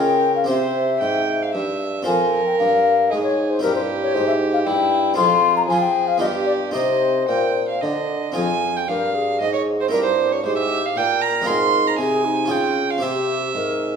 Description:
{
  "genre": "classical, baroque-style sonata movement with continuo",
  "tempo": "115 BPM",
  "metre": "3/4",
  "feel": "straight",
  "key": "C minor from 5.2 s, F minor from 8.4 s",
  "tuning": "A4 = 440 Hz",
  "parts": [
    { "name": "baroque flute", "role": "melody", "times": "0.0-14.0 s", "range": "Eb4 to C6", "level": "-21 LUFS", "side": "left 6 dB", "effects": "none" },
    { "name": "warm violin", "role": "second line", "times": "0.0-14.0 s", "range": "E4 to C6", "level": "-22 LUFS", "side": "right 5 dB", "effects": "none" },
    { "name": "harpsichord", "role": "accompaniment", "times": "0.0-14.0 s", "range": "F2 to C5", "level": "-27 LUFS", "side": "left 2 dB", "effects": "none" },
    { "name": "mellow bassoon", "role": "bass", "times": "0.0-14.0 s", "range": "F2 to F3", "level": "-24 LUFS", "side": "right 2 dB", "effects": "none" }
  ],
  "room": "wet recital hall reverb, RT60 1.3 s",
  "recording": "recorded in a church or concert hall",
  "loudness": "-17 LUFS",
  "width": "side -6 dB against mid",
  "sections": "0.0-8.4 A section; 8.4-14.0 A section",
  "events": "none",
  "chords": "0.5 C; 2.1 Fm; 3.6 C7/G; 5.2 Fm; 6.2 G7; 6.7 Cm; 8.4 Fm; 9.9 C7/G; 11.5 Fm/Ab; 12.5 Db; 13.0 C",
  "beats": "| 0.48 1.01 1.54 | 2.07 2.59 3.12 | 3.63 4.15 4.66 | 5.18 5.69 6.21 | 6.75 7.28 7.82 | 8.36 8.88 9.40 | 9.92 10.44 10.96 | 11.47 11.99 12.51 | 13.03 13.55"
}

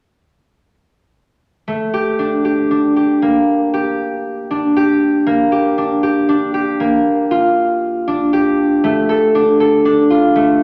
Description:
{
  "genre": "contemporary instrumental, contemporary",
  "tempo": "118 BPM",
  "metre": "7/4",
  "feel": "straight",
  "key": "G minor",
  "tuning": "A4 = 439 Hz",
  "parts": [
    { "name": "concert harp", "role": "arpeggios", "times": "1.7-10.6 s", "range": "A3 to A4", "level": "-15 LUFS", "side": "equal", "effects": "none" }
  ],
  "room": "wet recital hall reverb, RT60 1.8 s",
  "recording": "none",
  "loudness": "-15 LUFS",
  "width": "mono",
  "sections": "1.7-10.6 A section",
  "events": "none",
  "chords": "1.7 Gmadd9; 5.3 Bb; 8.8 Dm",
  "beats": "| 1.68 2.19 2.71 3.23 3.74 4.25 4.76 | 5.27 5.78 6.29 6.80 7.31 7.82 8.32 | 8.83 9.34 9.85 10.35"
}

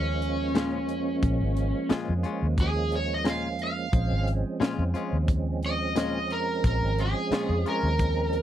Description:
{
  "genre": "straight-eighth soul blues",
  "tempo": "89 BPM",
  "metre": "4/4",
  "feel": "swing 55% on 16ths",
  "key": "Bb minor",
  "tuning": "A4 = 439 Hz",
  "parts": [
    { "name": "overdriven slide guitar", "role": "melody", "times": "0.0-8.4 s", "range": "Db4 to F5", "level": "-29 LUFS", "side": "right 1 dB", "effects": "none" },
    { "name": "percussive tonewheel organ", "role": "accompaniment", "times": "0.0-8.4 s", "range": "F3 to Db4", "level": "-32 LUFS", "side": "right 5 dB", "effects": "overdrive, chorus vibrato, slow rotary speaker" },
    { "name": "vintage muted fingered electric bass", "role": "bass", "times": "0.0-8.4 s", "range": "Ab1 to F2", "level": "-28 LUFS", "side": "equal", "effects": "none" },
    { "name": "tight funk drum kit", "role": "drums", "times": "0.2-8.4 s", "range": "hi-hat, kick drum, snare drum", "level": "-26 LUFS", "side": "equal", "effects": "none" },
    { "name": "direct-recorded clean electric guitar", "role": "stabs", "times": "0.5-7.9 s", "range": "Bb2 to F4", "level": "-32 LUFS", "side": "left 7 dB", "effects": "spring reverb" }
  ],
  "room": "little or no reverb",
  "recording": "dry, close 1970s-style studio recording",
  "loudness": "-24 LUFS",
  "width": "side -11 dB against mid",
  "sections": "0.0-8.4 A section",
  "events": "none",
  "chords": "0.0 Bbm7",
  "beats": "0.56 | 1.24 1.91 2.58 3.26 | 3.94 4.61 5.29 5.96 | 6.64 7.32 7.99"
}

